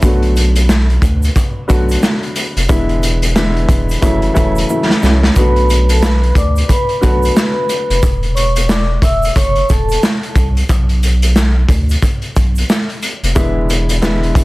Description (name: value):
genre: hip hop, boom-bap hip-hop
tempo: 90 BPM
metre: 4/4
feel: swing 61% on 16ths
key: B dorian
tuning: A4 = 439 Hz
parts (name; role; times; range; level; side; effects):
- dark upright piano; accompaniment; 0.0-8.0, 13.4-14.4 s; C#3 to F#4; -18 LUFS; left 1 dB; high-pass filter, low-pass filter
- warm sub bass; bass; 0.0-14.4 s; E1 to D2; -14 LUFS; equal; none
- raw garage drum kit; drums; 0.0-14.4 s; hi-hat, kick drum, snare drum; -14 LUFS; equal; none
- egg shaker; percussion; 0.0-14.4 s; none; -34 LUFS; right 5 dB; none
- vibraphone with medium mallets; melody; 5.4-10.0 s; A4 to E6; -18 LUFS; equal; high-pass filter, low-pass filter, digital delay
room: light reverb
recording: dense, heavily limited modern master, vinyl crackle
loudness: -11 LUFS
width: side -20 dB against mid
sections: 0.0-14.4 A section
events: drum fill 4.7-5.4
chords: 0.0 Bm7; 2.7 E7; 4.0 F#m7; 5.4 Bm7; 8.0 C#m/E; 9.4 F#m7; 10.7 N.C.; 13.4 E7